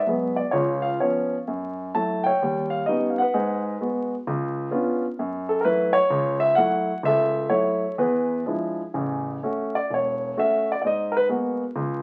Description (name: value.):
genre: solo jazz.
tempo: 129 BPM.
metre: 4/4.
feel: swing 66% on 8ths, rubato.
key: F# minor, A major from 8.9 s.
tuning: A4 = 440 Hz.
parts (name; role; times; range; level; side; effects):
warm grand piano; solo; 0.0-12.0 s; E1 to A5; -24 LUFS; equal; none.
room: wet club reverb, RT60 0.6 s.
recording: very old 78 rpm record, vinyl crackle.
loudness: -24 LUFS.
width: mono.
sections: 0.0-8.9 A section; 8.9-12.0 B section.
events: grand piano solo 8.9-12.0.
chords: 0.0 G#m7b5; 0.5 C#7; 1.5 F#m7; 2.4 D#7b13; 3.3 G#m7; 4.3 C#7b9; 5.2 F#m7; 8.0 E7b9; 8.9 A6; 10.8 G#m9.